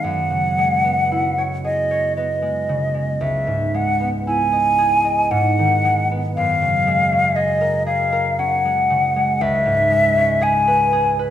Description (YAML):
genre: classical, impressionist duo for flute and harp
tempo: 58 BPM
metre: 3/4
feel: rubato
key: unclear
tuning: A4 = 439 Hz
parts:
  - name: hollow concert flute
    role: melody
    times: 0.0-11.2 s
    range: D#5 to G#5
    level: -17 LUFS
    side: left 1 dB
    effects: none
  - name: concert harp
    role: accompaniment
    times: 0.0-11.3 s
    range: C#2 to D#5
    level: -22 LUFS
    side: right 1 dB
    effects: none
room: wet recital hall reverb, RT60 1.4 s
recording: none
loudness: -16 LUFS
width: side -10 dB against mid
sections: 0.0-11.3 A section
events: none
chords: 0.0 F#9sus4; 3.2 C#m9; 5.3 G#m7; 6.4 F#add9; 9.4 C#m7